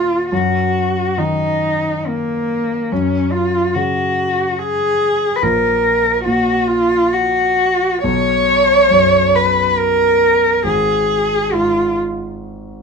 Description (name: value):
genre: classical, romantic duo for cello and grand piano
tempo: 69 BPM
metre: 3/4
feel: rubato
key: unclear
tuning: A4 = 441 Hz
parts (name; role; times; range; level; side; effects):
- rich cello; melody; 0.0-12.0 s; Bb3 to Db5; -14 LUFS; equal; none
- warm concert grand piano; accompaniment; 0.0-12.8 s; Ab1 to Eb3; -21 LUFS; left 1 dB; none
room: light reverb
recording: minimal, uncompressed stereo recording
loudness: -13 LUFS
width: side -5 dB against mid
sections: 0.0-12.8 A section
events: none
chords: 0.3 Ebm/Gb; 2.9 Gb5; 5.4 N.C.; 8.0 B5; 10.6 N.C.